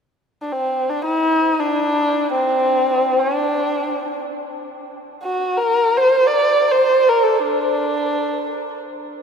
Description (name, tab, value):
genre	persian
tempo	free time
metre	none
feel	none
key	D dastgah homayun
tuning	A4 = 441 Hz
part	dark kamancheh	melody	0.4-8.8 s	C4 to D5	-16 LUFS	equal	none
room	wet cathedral reverb, RT60 5.5 s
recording	recorded in a church or concert hall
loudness	-16 LUFS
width	side -6 dB against mid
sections	0.1-9.2 A section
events	none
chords	none